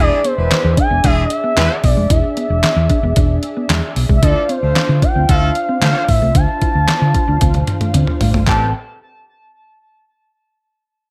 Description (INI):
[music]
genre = early-eighties boogie funk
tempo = 113 BPM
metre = 4/4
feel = straight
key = A minor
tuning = A4 = 436 Hz
[part]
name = gliding portamento lead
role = melody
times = 0.0-8.7 s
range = C5 to A5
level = -21 LUFS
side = equal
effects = chorus, phaser
[part]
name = clear horn section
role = second line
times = 0.0-8.7 s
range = E3 to C5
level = -26 LUFS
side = equal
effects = plate reverb
[part]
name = mellow synth brass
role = accompaniment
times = 0.0-8.7 s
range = C4 to G5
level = -27 LUFS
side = equal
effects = chorus, plate reverb
[part]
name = mellow electric guitar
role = riff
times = 0.0-8.6 s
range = G#3 to F4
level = -25 LUFS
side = equal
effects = analog chorus
[part]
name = hollow-body short-scale fingered electric bass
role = bass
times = 0.0-8.7 s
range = E1 to D3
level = -18 LUFS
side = equal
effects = none
[part]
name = detuned 8-bit digital drum machine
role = drums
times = 0.2-8.6 s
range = handclaps, hi-hat, kick drum, snare drum, toms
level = -19 LUFS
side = equal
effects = overdrive
[sound]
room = little or no reverb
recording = none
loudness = -15 LUFS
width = mono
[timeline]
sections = 0.0-8.5 A section; 8.5-10.6 B section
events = drum fill 7.4-8.5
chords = 0.0 E7; 4.2 Dm9; 8.5 Am9